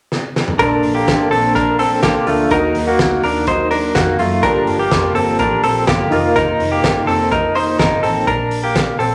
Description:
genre	jangly indie pop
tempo	125 BPM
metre	4/4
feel	straight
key	Bb major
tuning	A4 = 441 Hz
part	loose indie drum kit	drums	0.1-9.1 s	hi-hat, kick drum, snare drum, toms	-23 LUFS	equal	none
part	picked steel-string acoustic guitar	accompaniment	0.6-8.3 s	F2 to A4	-26 LUFS	equal	none
part	warbly lo-fi synth keys	accompaniment	0.6-8.3 s	D4 to Bb4	-23 LUFS	equal	chorus
part	direct-recorded clean electric guitar	arpeggios	0.6-9.1 s	A3 to C5	-18 LUFS	equal	tremolo
part	vintage muted fingered electric bass	bass	0.6-9.1 s	F1 to Gb2	-28 LUFS	equal	none
room	wet large studio reverb, RT60 0.8 s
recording	none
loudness	-16 LUFS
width	mono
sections	0.6-8.3 A section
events	drum fill 0.1-0.6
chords	0.0 N.C.; 0.6 Bbmaj7; 2.5 Ebm; 4.4 Gm7; 6.1 F7sus4; 8.3 Bbmaj7

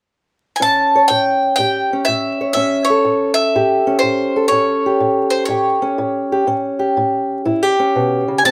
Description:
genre	acoustic country blues, solo or duo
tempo	123 BPM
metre	4/4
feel	swing 67% on 8ths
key	A mixolydian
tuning	A4 = 440 Hz
part	bowl-back mandolin	melody	0.6-8.5 s	C5 to A5	-18 LUFS	equal	none
part	fingerpicked old ladder-braced acoustic guitar	accompaniment	0.6-8.5 s	A2 to C#5	-19 LUFS	equal	none
room	moderate studio reverb, RT60 0.6 s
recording	rough home demo mix, vinyl crackle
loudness	-16 LUFS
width	mono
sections	0.6-8.5 A section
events	none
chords	0.0 N.C.; 0.6 A7

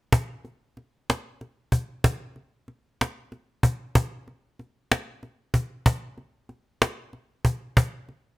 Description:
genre	gospel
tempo	63 BPM (dotted quarters)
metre	6/8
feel	straight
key	none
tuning	none
part	cajon	drums	0.1-8.2 s	none	-20 LUFS	equal	none
room	light reverb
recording	none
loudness	-24 LUFS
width	side -20 dB against mid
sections	0.1-4.0 A section; 4.0-8.4 B section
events	none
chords	none

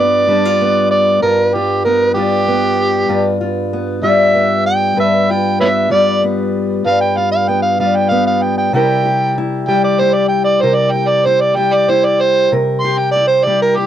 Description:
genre	acoustic country blues, solo or duo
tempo	64 BPM (dotted quarters)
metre	12/8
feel	straight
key	G mixolydian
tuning	A4 = 443 Hz
part	overdriven harmonica	melody	0.0-13.9 s	G4 to C6	-13 LUFS	right 2 dB	none
part	fingerpicked steel-string acoustic guitar	accompaniment	0.0-13.9 s	G2 to B4	-16 LUFS	left 2 dB	none
room	light reverb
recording	dry, close 1970s-style studio recording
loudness	-12 LUFS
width	side -10 dB against mid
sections	0.0-13.9 A section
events	harmonica solo 0.0-13.9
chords	0.0 G7; 8.7 C7

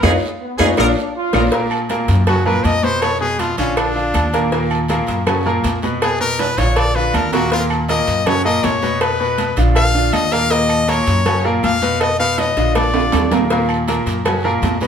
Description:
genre	latin, salsa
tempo	160 BPM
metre	4/4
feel	straight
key	Eb minor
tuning	A4 = 440 Hz
part	clear horn section	melody	0.0-1.4 s	Ab3 to Bb4	-20 LUFS	equal	none
part	clear concert grand piano	accompaniment	0.0-14.9 s	Bb2 to Cb5	-19 LUFS	equal	none
part	upright bass	bass	0.0-14.9 s	Bb1 to Gb2	-20 LUFS	equal	none
part	claves	percussion	0.0-14.4 s	none	-32 LUFS	right 1 dB	none
part	congas	percussion	0.0-14.9 s	none	-27 LUFS	left 1 dB	none
part	cowbell	percussion	0.0-14.8 s	none	-25 LUFS	left 2 dB	none
part	guiro	percussion	0.0-14.9 s	none	-35 LUFS	right 4 dB	none
part	timbales and agogo bells	percussion	0.0-14.8 s	none	-24 LUFS	right 4 dB	none
part	brilliant trombone section	second line	0.4-1.5 s	Cb4 to F4	-24 LUFS	equal	none
part	brilliant trumpet	melody	2.3-13.3 s	Db4 to F5	-19 LUFS	left 2 dB	none
room	moderate stone room reverb, RT60 1.0 s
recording	band playing live in one room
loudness	-14 LUFS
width	side -7 dB against mid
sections	0.0-1.5 A section; 1.5-13.5 B section; 13.5-14.9 C section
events	band accent 0.0-1.5; drum fill 1.0-1.5, 6.4-7.5, 12.4-13.5; trumpet solo 1.5-13.5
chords	0.0 Fm7b5; 0.8 Bb7; 1.5 Gb; 3.0 Bb7b9; 3.8 Bb; 4.5 Eb5; 5.3 Gb; 6.0 Bb7b9; 6.8 Bb; 7.5 Eb5; 8.3 Gb; 9.0 Bdim; 9.8 Bb; 10.5 Eb5; 11.3 Gb; 12.0 Bmaj7#11; 12.8 Bb; 13.5 Eb5; 14.3 Gb

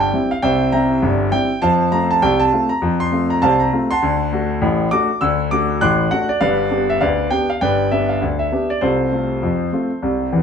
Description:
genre	ragtime piano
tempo	100 BPM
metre	2/4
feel	swing 60% on 16ths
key	F major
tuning	A4 = 440 Hz
part	warm grand piano	solo	0.0-10.4 s	G1 to F#6	-15 LUFS	equal	none
room	wet small room reverb, RT60 0.5 s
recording	band playing live in one room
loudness	-15 LUFS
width	side -7 dB against mid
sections	0.0-10.4 A section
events	none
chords	0.0 C7; 1.6 F; 4.0 D7; 6.4 G; 8.8 F/C

